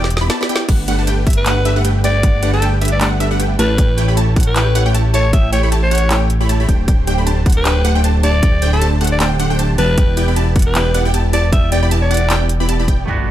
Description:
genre	future bass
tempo	155 BPM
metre	4/4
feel	swing 56% on 16ths, half-time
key	unclear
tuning	A4 = 442 Hz
part	raspy alto saxophone	melody	0.0-12.4 s	A4 to E5	-21 LUFS	left 1 dB	sidechain pumping, dub echo
part	wide unison pluck	arpeggios	0.0-13.1 s	E5 to B5	-25 LUFS	right 1 dB	phaser, sidechain pumping
part	supersaw stab	riff	0.0-13.1 s	A3 to B5	-21 LUFS	right 1 dB	sidechain pumping
part	fat analog bass	bass	0.0-13.3 s	D1 to A1	-16 LUFS	equal	sidechain pumping
part	trap drum kit	drums	0.0-13.0 s	crash cymbal, handclaps, hi-hat, snare drum	-22 LUFS	equal	none
part	electronic kick drum	drums	0.7-13.0 s	none	-14 LUFS	equal	none
part	clean electric guitar	accompaniment	13.1-13.3 s	A3 to F#4	-21 LUFS	right 6 dB	sidechain pumping
part	shimmering ambient pad	sustained chords	13.1-13.3 s	none	barely audible	none	none
part	impact	sound effects	13.1-13.3 s	none	-19 LUFS	equal	none
room	light reverb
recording	none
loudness	-12 LUFS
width	side -12 dB against mid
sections	0.0-13.1 A section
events	drop 0.0-13.1; drum fill 0.0-0.7; impact 13.1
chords	0.0 Em7; 0.7 Gmaj9; 3.6 A7; 6.7 D7sus4; 9.8 Em7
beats	0.30 | 0.69 1.07 1.46 1.85 | 2.23 2.62 3.01 3.40 | 3.78 4.17 4.56 4.94 | 5.33 5.72 6.11 6.49 | 6.88 7.27 7.65 8.04 | 8.43 8.81 9.20 9.59 | 9.98 10.36 10.75 11.14 | 11.53 11.91 12.30 12.69 | 13.07

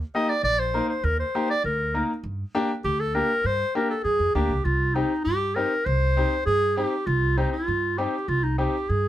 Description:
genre	klezmer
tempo	99 BPM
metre	2/4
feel	straight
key	G minor, C minor from 4.7 s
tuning	A4 = 440 Hz
part	warm clarinet	melody	0.1-9.1 s	Eb4 to Eb5	-24 LUFS	equal	none
part	bright upright piano	accompaniment	0.1-8.7 s	Bb3 to Bb4	-27 LUFS	left 2 dB	none
part	upright bass	bass	0.4-9.1 s	Bb1 to G2	-26 LUFS	right 1 dB	none
room	light reverb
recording	none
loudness	-22 LUFS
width	side -13 dB against mid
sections	0.0-4.7 A section; 4.7-9.1 B section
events	none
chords	0.0 Eb; 2.2 Gm; 4.7 Cm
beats	0.44 | 1.04 1.64 | 2.24 2.84 | 3.44 4.05 | 4.65 5.26 | 5.86 6.46 | 7.07 7.68 | 8.28 8.89

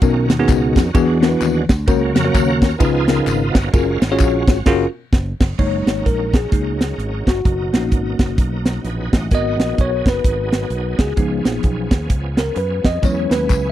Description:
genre	uptempo gospel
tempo	129 BPM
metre	4/4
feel	swing 60% on 8ths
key	F# major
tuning	A4 = 438 Hz
part	bell-like tine electric piano	accompaniment	0.0-13.7 s	B2 to D#5	-19 LUFS	left 2 dB	medium stereo tremolo
part	bright tonewheel organ	sustained chords	0.0-13.7 s	B2 to F#5	-26 LUFS	right 4 dB	slow rotary speaker, chorus vibrato
part	fingered electric bass	bass	0.0-13.7 s	F#1 to F#2	-22 LUFS	equal	none
part	crisp fusion drum kit	drums	0.0-13.6 s	crash cymbal, hi-hat, kick drum, ride cymbal, snare drum	-16 LUFS	equal	none
part	tambourine and handclaps	percussion	0.0-4.6, 13.0-13.6 s	none	-32 LUFS	left 10 dB	none
room	little or no reverb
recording	dry, close 1970s-style studio recording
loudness	-15 LUFS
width	side -12 dB against mid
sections	0.0-5.6 A section; 5.6-13.7 B section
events	tonewheel organ solo 0.0-5.6; band accent 4.7-5.6; tine electric piano solo 5.6-13.7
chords	0.0 Bmaj9; 1.0 E9; 1.9 F#/C#; 2.8 C#9; 3.7 F#maj9; 5.6 F#6; 7.5 Bmaj7/F#; 9.3 G#m7; 11.2 C#7; 13.0 E6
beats	| 0.02 0.49 0.95 1.42 | 1.88 2.35 2.81 3.27 | 3.74 4.20 4.67 5.13 | 5.59 6.06 6.52 6.99 | 7.45 7.92 8.38 8.85 | 9.31 9.78 10.24 10.71 | 11.17 11.64 12.10 12.57 | 13.03 13.50

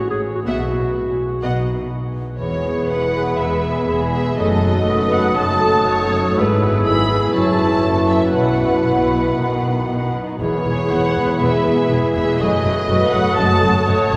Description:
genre	classical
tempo	116-129 BPM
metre	4/4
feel	rubato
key	E major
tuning	A4 = 439 Hz
part	warm clarinet	second line	0.0-14.2 s	F#4 to A4	-27 LUFS	equal	none
part	concert harp	arpeggios	0.0-14.2 s	E2 to E5	-28 LUFS	equal	none
part	rich symphonic violin section	melody	0.5-14.1 s	D#5 to B5	-26 LUFS	equal	none
part	warm symphonic violin section	second line	0.5-14.2 s	G#4 to E5	-29 LUFS	equal	none
part	dark symphonic viola section	accompaniment	0.5-14.2 s	A3 to G#4	-27 LUFS	equal	none
part	rich studio double bass section	bass	0.5-14.2 s	E1 to B1	-28 LUFS	equal	none
part	rich symphonic cello section	bass	0.5-14.2 s	E2 to B2	-27 LUFS	equal	none
part	mellow silver concert flute	second line	2.4-14.2 s	B5 to E6	-27 LUFS	equal	none
part	mellow bassoon	accompaniment	2.4-14.2 s	D#3 to F#3	-28 LUFS	equal	none
part	mellow French horn section	sustained chords	2.4-14.2 s	F#3 to F#4	-27 LUFS	equal	none
room	wet cathedral reverb, RT60 4.5 s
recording	recorded in a church or concert hall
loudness	-18 LUFS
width	mono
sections	0.0-2.4 A section; 2.4-14.2 B section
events	none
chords	0.5 Bsus4; 1.4 B; 2.4 E; 4.4 D#dim/F#; 6.4 E/G#; 7.4 F#m7; 8.4 Bsus4; 9.4 B; 10.4 E; 12.4 D#dim/F#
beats	0.00 | 0.47 0.95 1.43 1.91 | 2.40 2.90 3.40 3.90 | 4.40 4.90 5.39 5.88 | 6.38 6.87 7.35 7.85 | 8.36 8.88 9.39 9.90 | 10.41 10.92 11.42 11.91 | 12.41 12.90 13.39 13.88

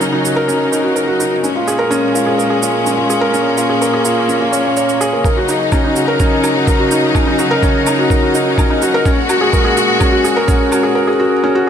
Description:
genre	piano and strings electronica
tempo	126 BPM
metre	4/4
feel	straight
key	Eb minor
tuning	A4 = 440 Hz
part	clear symphonic string section	sustained chords	0.0-10.9 s	Bb2 to Gb4	-18 LUFS	left 1 dB	none
part	felt-muted upright piano	riff	0.0-11.7 s	Db4 to Db5	-14 LUFS	equal	ping-pong delay
part	dark detuned saw bass	bass	0.0-11.0 s	none	barely audible	none	none
part	shaker and woodblock	drums	0.0-10.8 s	none	-25 LUFS	right 5 dB	small room reverb
part	electronic kick drum	drums	5.2-10.6 s	none	-15 LUFS	right 1 dB	small room reverb
room	moderate huge ambient reverb, RT60 6.6 s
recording	none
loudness	-12 LUFS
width	side -8 dB against mid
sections	0.0-11.7 A section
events	build-up 0.0-11.7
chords	0.0 Ebm7; 1.4 Bbm7; 5.2 Ebm7; 9.1 Gbadd9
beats	0.01 0.48 0.96 | 1.44 1.91 2.39 2.87 | 3.34 3.82 4.29 4.77 | 5.25 5.72 6.20 6.68 | 7.15 7.63 8.10 8.58 | 9.06 9.53 10.01 10.48 | 10.96 11.44

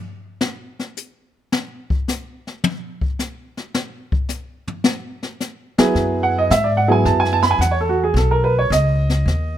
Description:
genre	jazz piano trio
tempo	108 BPM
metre	4/4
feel	swing 69% on 8ths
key	E major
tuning	A4 = 441 Hz
part	jazz brush drum kit	drums	0.4-9.6 s	brushed snare drum, hi-hat, kick drum, snare drum, toms	-21 LUFS	left 3 dB	none
part	warm upright piano	melody	5.8-9.6 s	F#3 to B5	-17 LUFS	right 3 dB	none
part	upright bass	bass	5.8-9.6 s	B1 to G#2	-19 LUFS	left 1 dB	none
room	light reverb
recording	none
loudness	-17 LUFS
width	side -11 dB against mid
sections	0.0-9.6 A section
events	upright piano solo 0.0-9.6; drum solo 0.0-5.9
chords	0.0 N.C.; 5.9 Eadd9; 8.2 Badd9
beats	0.41 0.96 | 1.52 2.07 2.63 3.18 | 3.73 4.29 4.84 5.39 | 5.95 6.50 7.05 7.61 | 8.16 8.71 9.26

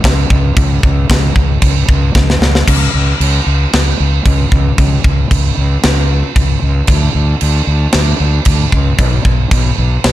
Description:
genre	heavy metal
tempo	114 BPM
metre	4/4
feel	straight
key	unclear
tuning	A4 = 440 Hz
part	fuzz fingered electric bass	bass	0.0-10.1 s	B1 to D2	-12 LUFS	equal	overdrive
part	tight metal drum kit	drums	0.0-10.1 s	crash cymbal, kick drum, snare drum	-13 LUFS	equal	none
room	little or no reverb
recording	dark, warm production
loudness	-10 LUFS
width	side -14 dB against mid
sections	0.0-2.7 A section; 2.7-10.1 B section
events	drum fill 2.1-2.7; half time 2.7-10.1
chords	none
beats	0.04 | 0.56 1.09 1.62 2.15 | 2.67 3.20 3.73 4.25 | 4.78 5.31 5.83 6.36 | 6.89 7.41 7.94 8.47 | 8.99 9.52 10.04

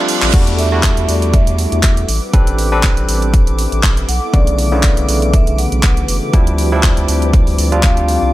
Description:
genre	deep house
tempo	120 BPM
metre	4/4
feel	swing 55% on 16ths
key	E minor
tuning	A4 = 438 Hz
part	vibraphone with medium mallets	melody	0.0-8.3 s	D5 to F#5	-23 LUFS	equal	analog delay
part	hollow soft pad	sustained chords	0.0-8.3 s	F3 to D6	-28 LUFS	left 1 dB	chorus, vintage 12-bit sampler grit, sidechain pumping
part	barky tine electric piano	stabs	0.0-8.3 s	C#3 to B4	-19 LUFS	equal	medium stereo tremolo, sidechain pumping
part	reverse cymbal and downlifter	sound effects	0.0-4.3 s	none	-24 LUFS	right 6 dB	none
part	analog string pad	texture	0.0-8.3 s	D6	-30 LUFS	right 1 dB	ensemble chorus, sidechain pumping
part	ethereal airy pad	texture	0.0-8.3 s	D4 to B5	-29 LUFS	left 3 dB	ensemble chorus, built-in reverb, phaser, sidechain pumping
part	house drum kit	drums	0.1-8.2 s	crash cymbal, handclaps, hi-hat	-20 LUFS	equal	none
part	round analog bass	bass	0.2-8.3 s	F#1 to E2	-17 LUFS	equal	sidechain pumping
part	electronic kick drum	drums	0.3-7.9 s	none	-12 LUFS	equal	none
room	little or no reverb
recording	none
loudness	-11 LUFS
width	side -16 dB against mid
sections	0.3-8.3 A section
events	break 0.0-0.3; drum fill 0.0-0.3; reverse cymbal 0.0-0.3; drop 0.3-8.3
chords	0.3 Em11; 2.1 Am11; 4.1 Bm11; 6.3 Dm11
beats	| 0.34 0.83 1.33 1.83 | 2.33 2.83 3.33 3.83 | 4.33 4.83 5.33 5.83 | 6.33 6.83 7.33 7.83

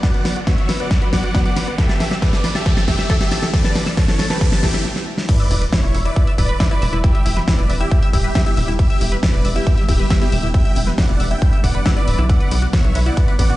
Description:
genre	uplifting trance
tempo	137 BPM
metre	4/4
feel	straight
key	E minor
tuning	A4 = 439 Hz
part	big supersaw lead	melody	0.0-13.6 s	E4 to G5	-25 LUFS	right 1 dB	phaser, sidechain pumping, tape echo
part	shimmering ambient pad	sustained chords	0.0-13.6 s	D3 to F#4	-28 LUFS	equal	chorus, built-in reverb, vintage 12-bit sampler grit, sidechain pumping
part	tight sequenced synth	arpeggios	0.0-13.5 s	B3 to A5	-28 LUFS	left 2 dB	chorus, phaser, sidechain pumping, tape echo
part	big-room dance drum kit	drums	0.0-13.6 s	crash cymbal, hi-hat, ride cymbal, snare drum	-23 LUFS	equal	none
part	electronic kick drum	drums	0.0-13.5 s	none	-16 LUFS	equal	none
part	riser and sub drop	sound effects	0.0-7.0 s	none	-28 LUFS	equal	none
part	tight sequencer bass	bass	5.5-13.5 s	D1 to B1	-19 LUFS	equal	sidechain pumping
room	digital ambience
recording	played on a big sound system in a bare room, stone room reverb, nothing above 10.3 kHz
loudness	-14 LUFS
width	side -16 dB against mid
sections	0.0-5.3 A section; 5.3-13.6 B section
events	build-up 0.0-5.3; drum fill 0.0-4.8, 4.8-5.3; riser 0.0-4.8; filter sweep on synth arpeggio sound 0.0-5.3; stop 4.8-5.3; drop 5.3-13.6; impact 5.3-7.0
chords	0.0 Bm; 1.8 A7sus4; 5.3 Em7; 12.3 Bm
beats	| 0.03 0.47 0.91 1.35 | 1.78 2.22 2.66 3.10 | 3.54 3.97 4.41 4.85 | 5.29 5.73 6.16 6.60 | 7.04 7.48 7.92 8.35 | 8.79 9.23 9.67 10.11 | 10.54 10.98 11.42 11.86 | 12.29 12.73 13.17

